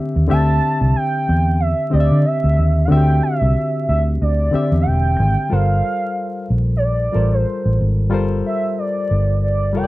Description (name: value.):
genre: R&B, neo-soul.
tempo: 92 BPM.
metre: 4/4.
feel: swing 54% on 16ths.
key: unclear.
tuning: A4 = 440 Hz.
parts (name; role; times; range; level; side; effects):
bright reed electric piano; accompaniment; 0.0-9.9 s; D3 to E5; -21 LUFS; left 2 dB; none.
vintage muted fingered electric bass; bass; 0.2-9.9 s; E1 to D3; -16 LUFS; equal; none.
gliding portamento lead; melody; 0.3-9.9 s; C5 to A5; -21 LUFS; right 2 dB; chorus.
room: little or no reverb.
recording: dry, close 1970s-style studio recording, vinyl crackle.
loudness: -15 LUFS.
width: side -18 dB against mid.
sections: 0.0-5.5 A section; 5.5-9.9 B section.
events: none.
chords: 0.0 D9sus4; 5.5 Gm11.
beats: | 0.28 0.93 1.58 2.24 | 2.89 3.54 4.19 4.84 | 5.50 6.15 6.80 7.45 | 8.11 8.76 9.41.